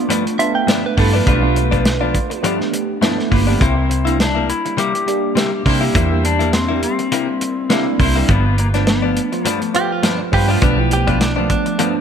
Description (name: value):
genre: straight-eighth soul blues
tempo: 103 BPM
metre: 4/4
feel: swing 55% on 16ths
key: G mixolydian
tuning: A4 = 442 Hz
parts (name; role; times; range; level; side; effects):
- clean lap steel guitar; melody; 0.0-9.7 s; Bb3 to G4; -22 LUFS; left 4 dB; none
- tine electric piano; accompaniment; 0.0-12.0 s; F3 to G4; -20 LUFS; right 4 dB; phaser
- direct-recorded clean electric guitar; stabs; 0.1-12.0 s; G2 to E4; -23 LUFS; left 7 dB; spring reverb
- warm soul drum kit; drums; 0.1-11.9 s; hi-hat, kick drum, snare drum; -19 LUFS; equal; none
- direct-recorded clean electric guitar; second line; 0.4-2.4, 9.8-11.8 s; D4 to G5; -22 LUFS; right 4 dB; spring reverb
- warm horn section; sustained chords; 1.0-11.2 s; E4 to C5; -25 LUFS; left 1 dB; none
- vintage muted fingered electric bass; bass; 1.0-11.5 s; G1 to C3; -18 LUFS; equal; none
room: light reverb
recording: none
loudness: -14 LUFS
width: side -7 dB against mid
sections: 0.0-12.0 A section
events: none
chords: 0.0 G7; 3.6 C7; 8.3 G7